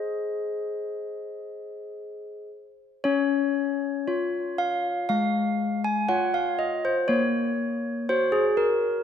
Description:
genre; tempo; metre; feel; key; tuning
classical, tune for handbells; 59 BPM; 4/4; straight; Db major; A4 = 445 Hz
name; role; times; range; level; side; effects
handbells; solo; 0.0-9.0 s; Ab3 to Ab5; -24 LUFS; left 1 dB; none
room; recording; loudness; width
moderate concert hall reverb, RT60 2.3 s; dark, warm production; -23 LUFS; side -8 dB against mid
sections
0.0-3.0 A section; 3.0-9.0 B section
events
none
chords
0.0 Ab; 3.0 Db; 7.1 Gb/Bb

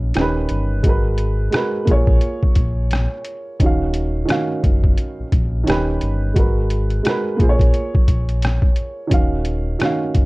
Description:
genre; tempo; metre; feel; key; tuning
lo-fi hip hop; 87 BPM; 4/4; swing 60% on 16ths; Eb minor; A4 = 440 Hz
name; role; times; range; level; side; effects
dark upright piano; accompaniment; 0.0-10.3 s; Eb3 to F5; -22 LUFS; right 2 dB; cassette tape, low-pass filter
sub bass with octave; bass; 0.0-10.3 s; Eb1 to Bb1; -20 LUFS; equal; none
trip hop sampler-style drum kit; drums; 0.1-10.3 s; hi-hat, kick drum, rim click; -17 LUFS; equal; none
room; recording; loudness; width
little or no reverb; dark, warm production; -16 LUFS; side -22 dB against mid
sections
0.0-10.3 A section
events
none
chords
0.1 Eb7b13; 0.8 Abm9; 1.9 Bbm7; 3.6 Ebm9; 5.7 Eb7b13; 6.4 Abm9; 7.4 Bbm7; 9.1 Ebm9

